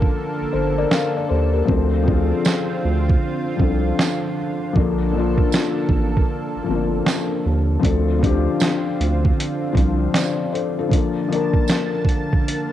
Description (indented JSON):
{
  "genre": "lo-fi hip hop",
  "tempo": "78 BPM",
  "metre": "4/4",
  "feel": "swing 65% on 16ths",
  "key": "Bb major",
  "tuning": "A4 = 440 Hz",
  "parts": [
    { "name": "felt-muted upright piano", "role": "accompaniment", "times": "0.0-12.7 s", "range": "F3 to F5", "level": "-22 LUFS", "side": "left 7 dB", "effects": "cassette tape" },
    { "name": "lush unison pad", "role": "sustained chords", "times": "0.0-12.7 s", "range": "D3 to A5", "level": "-25 LUFS", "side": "right 2 dB", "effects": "chorus, cassette tape" },
    { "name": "round analog bass", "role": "bass", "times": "0.0-10.1 s", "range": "G1 to Eb2", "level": "-21 LUFS", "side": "right 1 dB", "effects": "transformer saturation" },
    { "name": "lo-fi sampler-style drum kit", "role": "drums", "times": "0.0-12.7 s", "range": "hi-hat, kick drum, snare drum", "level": "-20 LUFS", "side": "right 1 dB", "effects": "cassette tape" },
    { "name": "tambourine", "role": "percussion", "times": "0.9-11.9 s", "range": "none", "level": "-32 LUFS", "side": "right 13 dB", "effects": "none" }
  ],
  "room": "light reverb, digital ambience",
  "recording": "home recording on cassette",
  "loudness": "-17 LUFS",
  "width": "side -12 dB against mid",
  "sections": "0.0-12.7 A section",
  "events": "break 0.0-7.8",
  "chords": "0.0 Bbmaj7; 1.7 Dm7; 4.8 Bbmaj7; 7.8 Dm7; 10.9 Bbmaj7"
}